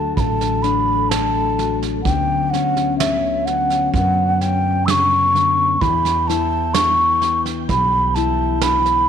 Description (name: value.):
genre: acoustic folk duo or small band.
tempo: 64 BPM.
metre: 4/4.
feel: straight.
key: unclear.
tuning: A4 = 440 Hz.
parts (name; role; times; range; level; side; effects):
mellow hollow wooden flute; melody; 0.0-9.1 s; E5 to E6; -17 LUFS; equal; none.
fingerpicked plugged-in steel-string acoustic guitar; accompaniment; 0.0-9.1 s; C#3 to C#5; -24 LUFS; left 12 dB; none.
mellow tonewheel organ; sustained chords; 0.0-9.1 s; E3 to G5; -29 LUFS; right 3 dB; slow rotary speaker.
upright bass; bass; 0.0-9.1 s; A1 to F#2; -23 LUFS; right 1 dB; none.
soft brush drum kit; drums; 0.2-9.0 s; kick drum, snare drum; -25 LUFS; right 7 dB; none.
room: light reverb.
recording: 1960s-style stereo with parts hard left and right.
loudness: -15 LUFS.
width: side -8 dB against mid.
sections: 0.0-9.1 A section.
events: none.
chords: 0.0 D; 2.1 Bmadd9/D; 5.8 Em.